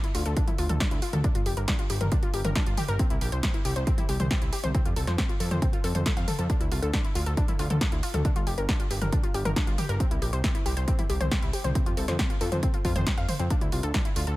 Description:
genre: uplifting trance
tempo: 137 BPM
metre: 4/4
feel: straight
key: D minor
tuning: A4 = 441 Hz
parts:
  - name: wide unison pluck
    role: arpeggios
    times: 0.0-14.4 s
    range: C4 to F5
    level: -33 LUFS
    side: left 2 dB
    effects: sidechain pumping, dub echo
  - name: techno drum kit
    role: drums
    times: 0.0-14.4 s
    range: hi-hat, snare drum, toms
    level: -31 LUFS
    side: equal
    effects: none
  - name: fat analog bass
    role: bass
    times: 0.1-14.4 s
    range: F1 to F2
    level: -28 LUFS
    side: equal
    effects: sidechain pumping
  - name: electronic kick drum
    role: drums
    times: 0.4-14.0 s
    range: none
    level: -27 LUFS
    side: equal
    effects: none
room: digital ambience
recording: none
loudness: -24 LUFS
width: side -18 dB against mid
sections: 0.0-14.4 A section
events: none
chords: 0.0 Dmadd9; 1.2 Gm7; 3.0 C; 4.7 F; 6.5 Dmadd9; 8.2 Gm7; 10.0 C; 11.8 F5; 13.5 Dmadd9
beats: 0.37 0.80 | 1.24 1.68 2.12 2.56 | 2.99 3.43 3.87 4.31 | 4.75 5.18 5.62 6.06 | 6.50 6.94 7.37 7.81 | 8.25 8.69 9.12 9.56 | 10.00 10.44 10.88 11.31 | 11.75 12.19 12.63 13.07 | 13.51 13.94

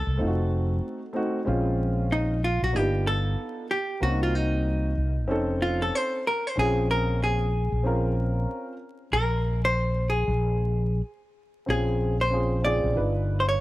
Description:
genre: hip hop, jazz-hop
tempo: 94 BPM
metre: 4/4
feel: swing 61% on 16ths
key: Bb minor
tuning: A4 = 440 Hz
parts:
  - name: vintage hollow-body jazz guitar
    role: melody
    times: 0.0-13.6 s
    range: Eb4 to D5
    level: -27 LUFS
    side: equal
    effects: none
  - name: fretless electric bass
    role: bass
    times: 0.0-13.6 s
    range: F1 to C2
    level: -25 LUFS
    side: equal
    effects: analog chorus
  - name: dark baby grand piano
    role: accompaniment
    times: 0.2-13.6 s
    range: Db3 to B4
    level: -29 LUFS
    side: equal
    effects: none
room: light reverb, small room reverb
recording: vinyl crackle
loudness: -23 LUFS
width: side -17 dB against mid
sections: 0.0-1.5 A section; 1.5-11.7 B section; 11.7-13.6 C section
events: hollow-body jazz guitar solo 1.5-11.7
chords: 0.2 F7b9; 1.5 Bbm9; 2.7 G7b13; 4.0 Cm7b5; 5.3 F7b13; 6.6 Bbm9; 13.0 G7b13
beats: 0.19 0.83 | 1.47 2.10 2.74 3.38 | 4.02 4.66 5.29 5.93 | 6.57 7.21 7.85 8.49 | 9.12 9.76 10.40 11.04 | 11.68 12.32 12.95 13.59

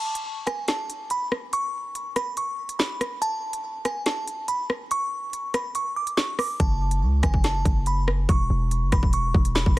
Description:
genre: hip hop, drill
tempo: 142 BPM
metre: 4/4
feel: half-time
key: F# minor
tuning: A4 = 440 Hz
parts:
  - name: delicate synth tine bell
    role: melody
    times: 0.0-9.8 s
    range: G#5 to D6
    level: -28 LUFS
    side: right 1 dB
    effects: chorus, digital delay
  - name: drill drum kit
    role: drums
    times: 0.2-9.8 s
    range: hi-hat, kick drum, rim click, snare drum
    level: -24 LUFS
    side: equal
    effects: overdrive
  - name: hard-hitting 808-style bass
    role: bass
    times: 6.6-9.8 s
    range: E1 to C#2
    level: -23 LUFS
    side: equal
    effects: none
room: digital ambience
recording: dense, heavily limited modern master, vinyl crackle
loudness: -23 LUFS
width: side -18 dB against mid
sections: 0.0-9.8 A section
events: break 0.0-6.6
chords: 0.0 N.C.; 6.6 F#m; 8.3 E5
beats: 0.26 0.68 1.11 | 1.53 1.95 2.37 2.80 | 3.22 3.64 4.06 4.49 | 4.91 5.33 5.75 6.18 | 6.60 7.02 7.44 7.87 | 8.29 8.71 9.13 9.56

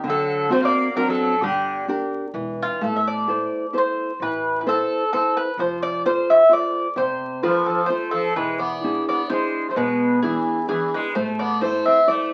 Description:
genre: italian folk, Italian serenade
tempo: 130 BPM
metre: 3/4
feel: swing 53% on 8ths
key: A harmonic minor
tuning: A4 = 435 Hz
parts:
  - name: mandolin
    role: melody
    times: 0.0-12.3 s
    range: F4 to E5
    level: -23 LUFS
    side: equal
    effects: none
  - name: sitar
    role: second line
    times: 0.0-1.8, 7.4-12.3 s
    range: D3 to C4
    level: -30 LUFS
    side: equal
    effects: none
  - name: nylon-string guitar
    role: accompaniment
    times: 0.0-12.3 s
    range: B2 to C5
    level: -26 LUFS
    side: equal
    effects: none
  - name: upright bass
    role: bass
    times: 0.0-11.8 s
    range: E1 to D2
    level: -45 LUFS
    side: equal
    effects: none
room: moderate studio ambience, RT60 0.5 s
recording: very old 78 rpm record, vinyl crackle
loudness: -21 LUFS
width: mono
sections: 0.0-2.8 A section; 2.8-12.3 B section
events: none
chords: 0.1 D7; 1.4 Gm; 2.3 N.C.; 2.8 Am; 5.6 F; 8.4 E7; 11.2 Am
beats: | 0.07 0.52 0.97 | 1.43 1.88 2.35 | 2.81 3.27 3.74 | 4.20 4.66 5.12 | 5.57 6.03 6.49 | 6.96 7.42 7.88 | 8.35 8.82 9.29 | 9.76 10.23 10.69 | 11.15 11.62 12.08

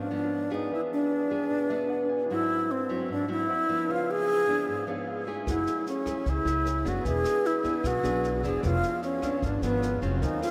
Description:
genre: bossa nova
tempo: 152 BPM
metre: 4/4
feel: straight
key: unclear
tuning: A4 = 435 Hz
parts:
  - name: alto flute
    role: melody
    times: 0.0-10.5 s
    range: B3 to G#4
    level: -30 LUFS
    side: equal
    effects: none
  - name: nylon-string guitar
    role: accompaniment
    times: 0.0-10.5 s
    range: E#2 to G#4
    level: -34 LUFS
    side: equal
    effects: none
  - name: warm concert grand piano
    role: accompaniment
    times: 0.0-10.5 s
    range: D4 to G#5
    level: -43 LUFS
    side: equal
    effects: none
  - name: upright bass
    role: bass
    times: 5.5-10.4 s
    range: E1 to D#2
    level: -33 LUFS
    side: equal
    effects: none
  - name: jazz brush drum kit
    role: drums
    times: 5.5-10.5 s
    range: kick drum, rim click, snare drum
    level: -40 LUFS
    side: equal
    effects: none
room: wet huge ambient reverb, RT60 8.4 s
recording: in a vast, echoing space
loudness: -28 LUFS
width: mono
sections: 0.0-10.5 A section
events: grand piano fill 1.5-2.3, 4.7-5.5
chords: 0.0 C#7b9; 0.7 E7; 2.3 G#aug7; 3.5 D9; 3.9 C#7b9; 5.5 F#m9; 7.0 E7; 8.6 C#7b9/E#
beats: 0.32 | 0.71 1.11 1.51 1.90 | 2.30 2.69 3.09 3.49 | 3.88 4.28 4.67 5.07 | 5.47 5.86 6.26 6.65 | 7.05 7.45 7.84 8.24 | 8.63 9.03 9.42 9.82 | 10.22

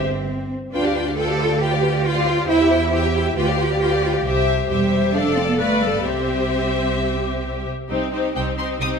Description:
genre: quick classical-period movement for string orchestra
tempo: 135 BPM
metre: 4/4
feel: straight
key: C major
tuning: A4 = 440 Hz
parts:
  - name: rich symphonic violin section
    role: melody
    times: 0.0-8.9 s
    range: E5 to Eb6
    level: -27 LUFS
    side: left 6 dB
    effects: none
  - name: rich symphonic violin section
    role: second line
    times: 0.0-9.0 s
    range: G4 to E5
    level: -26 LUFS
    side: left 6 dB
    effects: none
  - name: bright symphonic viola section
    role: accompaniment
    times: 0.0-9.0 s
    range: C4 to B4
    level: -24 LUFS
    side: equal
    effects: none
  - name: rich studio double bass section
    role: bass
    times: 0.0-9.0 s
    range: E1 to E2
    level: -25 LUFS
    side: right 3 dB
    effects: none
  - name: rich symphonic cello section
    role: bass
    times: 0.0-9.0 s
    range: G3 to A4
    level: -22 LUFS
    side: right 2 dB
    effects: none
room: moderate scoring stage reverb, RT60 1.6 s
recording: none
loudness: -18 LUFS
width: side -6 dB against mid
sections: 0.0-7.9 A section; 7.9-9.0 B section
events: none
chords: 0.0 C5; 0.7 G7/D; 2.5 C/E; 3.4 G7/D; 4.3 C; 5.1 Dm/F; 5.6 G7; 6.1 C; 7.9 Cm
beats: 0.29 | 0.73 1.17 1.61 2.05 | 2.48 2.92 3.37 3.81 | 4.25 4.70 5.14 5.60 | 6.05 6.51 6.98 7.44 | 7.89 8.35 8.80

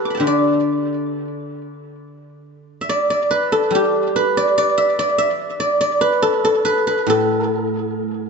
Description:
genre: chinese traditional, Chinese solo plucked strings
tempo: 70 BPM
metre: 2/4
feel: uneven beats, rubato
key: D zhi mode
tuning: A4 = 438 Hz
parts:
  - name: guzheng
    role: solo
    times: 0.0-8.3 s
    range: A2 to D6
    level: -16 LUFS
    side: equal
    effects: tape echo
room: moderate recital hall reverb, RT60 1.5 s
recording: nothing above 7.8 kHz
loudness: -16 LUFS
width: side -5 dB against mid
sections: 0.0-2.0 A section; 2.0-8.3 B section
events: none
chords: none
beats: | 0.23 1.10 | 1.98 2.85 | 3.72 4.56 | 5.39 6.23 | 7.08 7.98

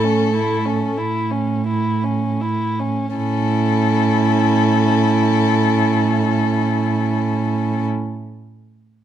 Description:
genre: classical, slow romantic movement for string quartet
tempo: 26-33 BPM (dotted quarters)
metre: 6/8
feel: rubato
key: A major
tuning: A4 = 439 Hz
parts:
  - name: warm violin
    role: melody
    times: 0.0-7.9 s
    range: A4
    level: -23 LUFS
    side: left 9 dB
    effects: none
  - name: dark violin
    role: second line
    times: 0.0-7.8 s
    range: C#4 to E4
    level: -22 LUFS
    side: left 2 dB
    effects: none
  - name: dark viola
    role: accompaniment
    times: 0.0-7.9 s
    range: A3 to E4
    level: -23 LUFS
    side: right 1 dB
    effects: none
  - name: dark cello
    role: bass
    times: 0.0-7.9 s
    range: A2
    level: -19 LUFS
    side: right 5 dB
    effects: none
room: light reverb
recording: dark, warm production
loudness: -16 LUFS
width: side -10 dB against mid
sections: 0.0-3.2 A section; 3.2-7.4 B section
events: slowing down 0.0-3.2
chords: 0.0 A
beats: 0.98 | 3.16 5.28

